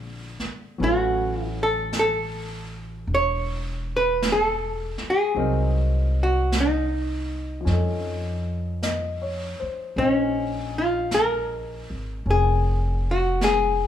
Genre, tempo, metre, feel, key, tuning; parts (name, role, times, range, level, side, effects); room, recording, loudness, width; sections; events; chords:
jazz ballad; 52 BPM; 4/4; swing 69% on 8ths; A4 = 440 Hz
warm grand piano; accompaniment; 0.0-13.9 s; D3 to Eb5; -32 LUFS; left 1 dB
upright bass; bass; 0.0-13.9 s; E1 to F2; -26 LUFS; equal
jazz brush drum kit; drums; 0.4-13.9 s; brushed snare drum, hi-hat, snare drum; -33 LUFS; right 1 dB
archtop guitar, miked and amplified; melody; 0.8-13.9 s; Db4 to C#5; -23 LUFS; left 1 dB
light reverb; band playing live in one room; -21 LUFS; side -10 dB against mid
0.0-13.9 A section
0.0 Bb9; 0.8 A69; 5.4 Cm7b5; 7.7 F7b13; 10.0 Bbm11